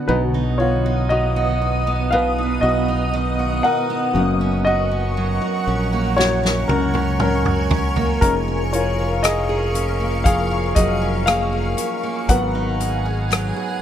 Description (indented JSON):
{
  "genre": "pop ballad",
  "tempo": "59 BPM",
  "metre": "4/4",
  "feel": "straight",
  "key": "unclear",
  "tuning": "A4 = 440 Hz",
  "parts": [
    { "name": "warm upright piano", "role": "accompaniment", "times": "0.0-13.8 s", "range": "F#3 to F#5", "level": "-22 LUFS", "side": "left 2 dB", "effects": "none" },
    { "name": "granular cloud pad", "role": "sustained chords", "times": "0.0-13.8 s", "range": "B3 to D#6", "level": "-25 LUFS", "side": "equal", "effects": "built-in reverb" },
    { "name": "picked steel-string acoustic guitar", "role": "arpeggios", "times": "0.1-13.8 s", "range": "F#2 to G#4", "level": "-26 LUFS", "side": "right 5 dB", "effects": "digital delay" },
    { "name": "modern bright fingered electric bass", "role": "bass", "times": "0.1-13.5 s", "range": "E#1 to C#2", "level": "-23 LUFS", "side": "equal", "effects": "none" },
    { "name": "natural country drum kit", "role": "drums", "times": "6.2-13.6 s", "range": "hi-hat, kick drum, rim click, snare drum, toms", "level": "-20 LUFS", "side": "equal", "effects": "none" }
  ],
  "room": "studio ambience",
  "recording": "none",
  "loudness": "-17 LUFS",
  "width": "side -10 dB against mid",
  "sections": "0.1-13.8 A section",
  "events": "upright piano solo 0.1-13.8; drum fill 6.2-8.2",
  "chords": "0.1 B; 4.2 F#; 8.2 C#6/E#; 12.3 G#m7",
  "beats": "| 0.08 1.10 2.12 3.13 | 4.15 5.17 6.18 7.20 | 8.22 9.24 10.25 11.27 | 12.29 13.30"
}